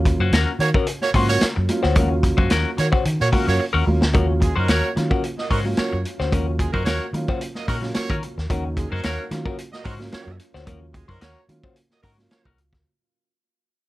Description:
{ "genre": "funk", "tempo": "110 BPM", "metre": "4/4", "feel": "straight", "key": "Eb dorian", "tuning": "A4 = 440 Hz", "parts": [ { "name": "dark upright piano", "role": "stabs", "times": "0.0-12.5 s", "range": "F3 to F4", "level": "-28 LUFS", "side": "right 2 dB", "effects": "tape echo" }, { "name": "vintage muted fingered electric bass", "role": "bass", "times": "0.0-12.8 s", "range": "C2 to Eb3", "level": "-23 LUFS", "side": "equal", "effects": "none" }, { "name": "electric guitar at the edge of break-up", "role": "accompaniment", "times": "0.1-12.8 s", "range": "Db4 to C5", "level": "-26 LUFS", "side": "left 5 dB", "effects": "wah" }, { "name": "vintage drum kit", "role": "drums", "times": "0.1-12.8 s", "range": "hi-hat, kick drum, snare drum", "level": "-23 LUFS", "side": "equal", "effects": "none" }, { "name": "warm horn section", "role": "second line", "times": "0.6-12.5 s", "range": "Gb3 to Eb5", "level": "-25 LUFS", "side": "right 4 dB", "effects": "none" } ], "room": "little or no reverb", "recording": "none", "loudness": "-18 LUFS", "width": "side -17 dB against mid", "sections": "0.0-4.1 A section; 4.1-12.9 B section", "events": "drum fill 3.6-4.1; fade-out 4.1-12.9", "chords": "0.0 Ebm7", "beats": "0.33 0.87 1.42 | 1.96 2.51 3.05 3.60 | 4.14 4.69 5.23 5.78 | 6.32 6.87 7.41 7.95 | 8.50 9.04 9.59 10.13 | 10.67 11.22 11.76 12.31" }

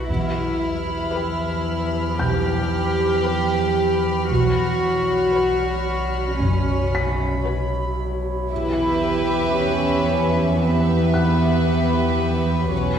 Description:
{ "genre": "cinematic, suspense film score", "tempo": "57 BPM", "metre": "4/4", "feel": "straight", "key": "unclear", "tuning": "A4 = 441 Hz", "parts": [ { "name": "glass harmonica", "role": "sustained chords", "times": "0.0-13.0 s", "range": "F#4 to B5", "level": "-29 LUFS", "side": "equal", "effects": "none" }, { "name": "rich symphonic cello section", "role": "bass", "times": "0.0-13.0 s", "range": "B3 to G4", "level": "-23 LUFS", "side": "equal", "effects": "none" }, { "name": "metallic inharmonic drone", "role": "drone", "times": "0.0-13.0 s", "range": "B1 to E2", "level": "-24 LUFS", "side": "left 1 dB", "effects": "chorus, built-in reverb" }, { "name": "felt-muted upright piano", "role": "texture", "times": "0.0-13.0 s", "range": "F#5 to B6", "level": "-33 LUFS", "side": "left 2 dB", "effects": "none" }, { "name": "dark studio double bass section", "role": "bass", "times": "0.1-13.0 s", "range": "F#1 to E2", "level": "-24 LUFS", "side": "right 3 dB", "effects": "none" }, { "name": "warm symphonic violin section", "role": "texture", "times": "0.1-8.0 s", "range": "B5 to E#6", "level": "-33 LUFS", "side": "left 4 dB", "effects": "none" }, { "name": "warm symphonic violin section", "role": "melody", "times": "1.1-13.0 s", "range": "B4 to E5", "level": "-30 LUFS", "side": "left 3 dB", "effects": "none" }, { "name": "warm symphonic violin section", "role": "second line", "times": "1.1-13.0 s", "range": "B4", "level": "-28 LUFS", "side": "left 2 dB", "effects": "none" }, { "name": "dark studio viola section", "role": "accompaniment", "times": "1.1-13.0 s", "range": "F#4 to G4", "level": "-29 LUFS", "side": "right 2 dB", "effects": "none" } ], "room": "wet scoring stage reverb, RT60 1.7 s", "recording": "heard from further back in the room", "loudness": "-18 LUFS", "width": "side -8 dB against mid", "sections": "0.0-13.0 A section", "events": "none", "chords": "0.1 Em; 4.3 Bsus2; 8.5 Em", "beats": "| 0.09 1.14 2.19 3.24 | 4.30 5.35 6.40 7.46 | 8.51 9.56 10.61 11.66 | 12.72" }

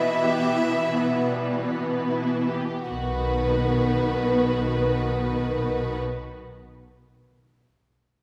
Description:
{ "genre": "classical, slow romantic movement for string orchestra", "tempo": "41 BPM", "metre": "4/4", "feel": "rubato", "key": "B major", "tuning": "A4 = 440 Hz", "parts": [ { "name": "warm chamber violin section", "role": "melody", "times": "0.0-6.0 s", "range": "B4 to E5", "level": "-30 LUFS", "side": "equal", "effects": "none" }, { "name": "warm symphonic violin section", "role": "second line", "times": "0.0-6.0 s", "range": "G3 to B4", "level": "-32 LUFS", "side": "equal", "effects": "none" }, { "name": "warm symphonic viola section", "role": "accompaniment", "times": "0.0-6.0 s", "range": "D#3 to B3", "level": "-30 LUFS", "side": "equal", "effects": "none" }, { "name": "warm symphonic cello section", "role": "bass", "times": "0.0-6.0 s", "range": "B2", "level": "-32 LUFS", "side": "equal", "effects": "none" }, { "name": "warm symphonic double bass section", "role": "bass", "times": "2.9-6.0 s", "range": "B1", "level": "-31 LUFS", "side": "equal", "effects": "none" } ], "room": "wet concert hall reverb, RT60 2.0 s", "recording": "recorded in a church or concert hall", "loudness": "-24 LUFS", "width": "mono", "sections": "0.0-2.9 A section; 2.9-8.2 B section", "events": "slowing down 0.0-2.9", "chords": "0.0 Em/B; 2.9 B", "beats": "1.32 | 2.88 4.32 5.76" }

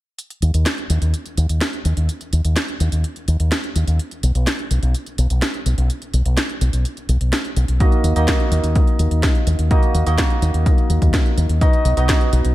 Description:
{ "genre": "italo disco", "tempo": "126 BPM", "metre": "4/4", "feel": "straight", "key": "Eb minor", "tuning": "A4 = 444 Hz", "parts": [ { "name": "house drum kit", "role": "drums", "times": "0.2-12.5 s", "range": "hi-hat, snare drum", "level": "-25 LUFS", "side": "equal", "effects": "small room ambience" }, { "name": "fingered electric bass with an envelope filter", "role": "bass", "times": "0.4-12.5 s", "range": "Cb2 to Eb2", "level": "-17 LUFS", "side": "equal", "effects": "low-pass filter" }, { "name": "barky tine electric piano", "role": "stabs", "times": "7.8-12.5 s", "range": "Bb3 to Eb5", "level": "-22 LUFS", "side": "right 1 dB", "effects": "lush chorus" }, { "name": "electronic kick drum", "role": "drums", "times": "7.8-12.2 s", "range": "none", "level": "-17 LUFS", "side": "equal", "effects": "small room ambience" } ], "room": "digital ambience", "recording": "none", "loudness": "-16 LUFS", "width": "side -16 dB against mid", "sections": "0.2-12.5 A section", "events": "filter sweep on fingered electric bass 0.2-12.5", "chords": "0.2 N.C.; 7.8 Ebm; 11.6 B", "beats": "| 0.18 0.66 1.14 1.61 | 2.09 2.57 3.04 3.52 | 4.00 4.47 4.95 5.42 | 5.90 6.38 6.85 7.33 | 7.80 8.28 8.76 9.23 | 9.71 10.19 10.66 11.14 | 11.61 12.09" }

